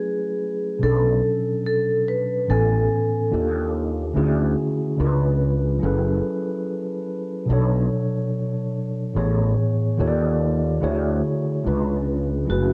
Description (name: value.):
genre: hip hop.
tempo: 72 BPM.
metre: 4/4.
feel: swing 59% on 16ths.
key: unclear.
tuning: A4 = 441 Hz.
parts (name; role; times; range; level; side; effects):
vibraphone with medium mallets; melody; 0.0-3.7, 12.5-12.7 s; F#4 to B4; -25 LUFS; equal; low-pass filter.
mellow tine electric piano; accompaniment; 0.0-12.7 s; A2 to G#5; -25 LUFS; equal; cassette tape, low-pass filter.
fretless electric bass; bass; 0.8-12.7 s; F#1 to D#2; -25 LUFS; equal; ensemble chorus.
room: moderate plate reverb, RT60 2.8 s.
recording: worn, warbling old tape, cassette tape, warbly pitch drift.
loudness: -22 LUFS.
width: mono.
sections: 0.0-12.7 A section.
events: none.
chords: 0.0 F#m11; 0.8 Bm9; 2.5 Amaj9; 3.3 D#maj9#11; 4.2 Dmaj9#11; 5.0 C#7b9; 5.8 F#m11; 7.5 Bm9; 9.2 Amaj9; 10.0 D#maj9#11; 10.8 Dmaj9#11; 11.7 C#7b9.